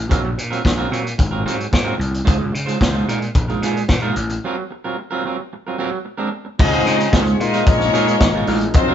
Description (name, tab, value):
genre	disco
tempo	111 BPM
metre	4/4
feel	straight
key	unclear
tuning	A4 = 444 Hz
part	gritty slap bass	bass	0.0-8.9 s	Ab1 to Db3	-22 LUFS	equal	overdrive
part	electric guitar at the edge of break-up	accompaniment	0.1-8.9 s	Gb3 to C5	-23 LUFS	right 4 dB	none
part	vintage drum kit	drums	0.1-8.9 s	crash cymbal, hi-hat, kick drum, snare drum	-18 LUFS	equal	none
part	clear studio string section	second line	6.6-8.9 s	C4 to Eb5	-23 LUFS	left 1 dB	none
part	tine electric piano	accompaniment	6.6-8.9 s	Gb3 to F4	-24 LUFS	left 5 dB	none
part	warm French horn section	sustained chords	6.6-8.9 s	Db3 to F4	-27 LUFS	right 2 dB	none
part	warm horn section	stabs	6.6-8.9 s	F3 to C5	-21 LUFS	left 4 dB	none
part	cowbell	percussion	6.6-8.9 s	none	-31 LUFS	left 1 dB	none
room	moderate studio reverb, RT60 0.8 s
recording	band playing live in one room, nothing above 7.8 kHz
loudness	-16 LUFS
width	side -9 dB against mid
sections	0.0-6.6 A section; 6.6-8.9 B section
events	break 4.4-6.6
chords	0.1 Gbmaj7#11/Bb; 1.2 Ab13; 2.3 Dbmaj9; 3.1 Bb7sus4; 4.4 Gbmaj7#11; 6.1 Bb9; 6.6 Dbmaj9; 7.4 Bb7sus4